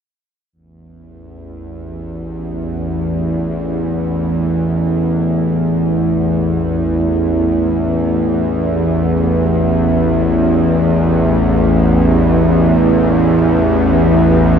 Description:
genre	ambient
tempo	free time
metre	none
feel	none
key	unclear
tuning	A4 = 438 Hz
part	bowed-like drone	solo	1.4-14.6 s	A1 to E2	-12 LUFS	equal	built-in reverb
room	wet cathedral reverb, RT60 5.0 s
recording	none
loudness	-12 LUFS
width	side -7 dB against mid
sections	0.5-14.6 A section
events	none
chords	0.5 A5

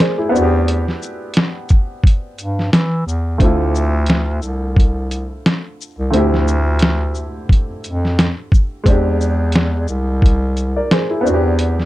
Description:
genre	lo-fi hip hop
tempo	88 BPM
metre	4/4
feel	swing 57% on 16ths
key	D dorian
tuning	A4 = 440 Hz
part	warm upright piano	accompaniment	0.0-11.9 s	D3 to D5	-20 LUFS	equal	low-pass filter
part	lo-fi sampler-style drum kit	drums	0.0-11.9 s	hi-hat, kick drum, shaker, snare drum	-14 LUFS	equal	none
part	breathy bass clarinet	bass	0.3-11.8 s	C2 to E3	-17 LUFS	equal	none
room	light reverb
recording	dark, warm production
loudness	-14 LUFS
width	side -16 dB against mid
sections	0.0-11.9 A section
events	none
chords	0.3 Cmaj9/E; 3.4 Dm9; 8.9 E7alt; 11.2 Cmaj9/E

